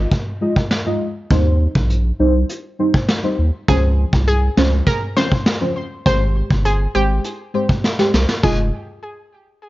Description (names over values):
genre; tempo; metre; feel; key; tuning
dancehall; 101 BPM; 4/4; straight; F minor; A4 = 440 Hz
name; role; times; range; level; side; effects
deep mellow chord stab; accompaniment; 0.0-8.7 s; F3 to Eb5; -20 LUFS; equal; chorus, phaser
saturated sub bass; bass; 0.0-8.7 s; F1 to Eb2; -16 LUFS; equal; none
vintage brush drum kit; drums; 0.1-8.6 s; crash cymbal, hi-hat, kick drum, snare drum; -18 LUFS; equal; none
analog pluck; second line; 3.7-8.7 s; G4 to C5; -24 LUFS; equal; chorus, tape echo
room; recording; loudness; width
little or no reverb; worn, warbling old tape, cassette tape, warbly pitch drift, nothing above 7.5 kHz; -15 LUFS; side -17 dB against mid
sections
0.0-8.4 A section; 8.4-9.7 B section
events
drum fill 7.8-8.4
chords
0.0 Fm7; 1.3 Eb6; 3.7 Dbmaj7; 6.1 Abmaj7; 8.4 Fm7